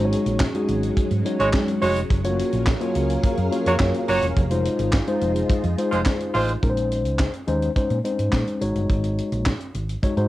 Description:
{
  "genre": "early-eighties boogie funk",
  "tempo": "106 BPM",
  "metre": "4/4",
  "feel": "straight",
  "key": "Bb minor",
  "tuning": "A4 = 438 Hz",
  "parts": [
    { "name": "mellow tine electric piano", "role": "accompaniment", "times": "0.0-10.3 s", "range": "Ab3 to Db5", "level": "-24 LUFS", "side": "left 2 dB", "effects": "medium stereo tremolo, cassette tape" },
    { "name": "soft string machine", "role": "sustained chords", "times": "0.0-6.6 s", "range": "Gb3 to F5", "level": "-28 LUFS", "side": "right 1 dB", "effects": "ensemble chorus, cassette tape, plate reverb" },
    { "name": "hollow-body short-scale fingered electric bass", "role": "bass", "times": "0.0-10.3 s", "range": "E1 to Bb2", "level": "-25 LUFS", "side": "equal", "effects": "none" },
    { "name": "tight funk drum kit", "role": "drums", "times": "0.1-10.3 s", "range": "handclaps, hi-hat, kick drum, snare drum", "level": "-24 LUFS", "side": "equal", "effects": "cassette tape" },
    { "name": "clear horn section", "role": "second line", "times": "1.4-6.5 s", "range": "Ab3 to Db5", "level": "-23 LUFS", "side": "right 2 dB", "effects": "cassette tape, plate reverb" }
  ],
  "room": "light reverb",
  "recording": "home recording on cassette",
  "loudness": "-20 LUFS",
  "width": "side -16 dB against mid",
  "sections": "0.0-6.6 A section; 6.6-10.3 B section",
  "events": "none",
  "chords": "0.0 Ab7sus4; 2.1 Gbmaj7; 4.4 Fm7; 6.6 Bbm11; 8.6 Ab7sus4"
}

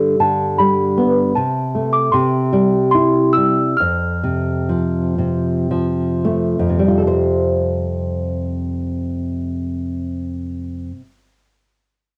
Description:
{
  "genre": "children's music",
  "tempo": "50-78 BPM",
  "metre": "3/4",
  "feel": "straight",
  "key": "F major",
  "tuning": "A4 = 439 Hz",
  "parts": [
    { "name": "small celesta", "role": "melody", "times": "0.0-5.7 s", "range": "A5 to F6", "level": "-21 LUFS", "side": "equal", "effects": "cassette tape" },
    { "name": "nylon-string guitar", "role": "accompaniment", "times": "0.0-11.4 s", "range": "F2 to C5", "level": "-19 LUFS", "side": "equal", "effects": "cassette tape" }
  ],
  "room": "moderate spring reverb, RT60 1.3 s",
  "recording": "home recording on cassette, faint mains hum",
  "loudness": "-18 LUFS",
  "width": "mono",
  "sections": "0.0-6.8 A section; 6.8-10.4 B section",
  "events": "slowing down 1.4-6.8",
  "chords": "0.0 G; 1.4 Amadd11/C; 2.1 C; 3.8 F; 6.8 Fsus2"
}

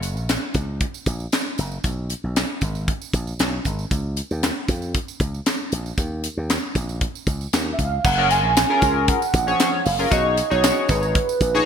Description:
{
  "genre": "early-eighties boogie funk",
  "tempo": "116 BPM",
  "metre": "4/4",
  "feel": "straight",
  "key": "F# major",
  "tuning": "A4 = 440 Hz",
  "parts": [
    { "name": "slap bass with an envelope filter", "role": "bass", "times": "0.0-11.6 s", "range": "F#1 to E#2", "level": "-25 LUFS", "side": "equal", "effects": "none" },
    { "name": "tight funk drum kit", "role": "drums", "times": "0.0-11.5 s", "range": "crash cymbal, handclaps, hi-hat, kick drum, snare drum", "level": "-22 LUFS", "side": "left 1 dB", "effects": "gated reverb" },
    { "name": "tambourine", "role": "percussion", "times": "0.0-11.7 s", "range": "none", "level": "-34 LUFS", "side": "right 11 dB", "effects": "none" },
    { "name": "warm velvety synth lead", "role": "melody", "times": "7.7-11.7 s", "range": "B4 to G#5", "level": "-21 LUFS", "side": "right 4 dB", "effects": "chorus, ping-pong delay" },
    { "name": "chorused polysynth", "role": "accompaniment", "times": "8.2-11.7 s", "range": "E#3 to C#5", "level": "-23 LUFS", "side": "left 4 dB", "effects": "none" }
  ],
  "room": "moderate plate reverb, RT60 1.8 s",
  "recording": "bright 1980s-style digital production",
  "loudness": "-19 LUFS",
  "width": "side -7 dB against mid",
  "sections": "0.0-8.0 A section; 8.0-11.7 B section",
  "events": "none",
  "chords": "0.0 F#; 1.8 G#m; 3.9 C#; 6.0 D#5; 8.0 F#maj9; 10.1 B69"
}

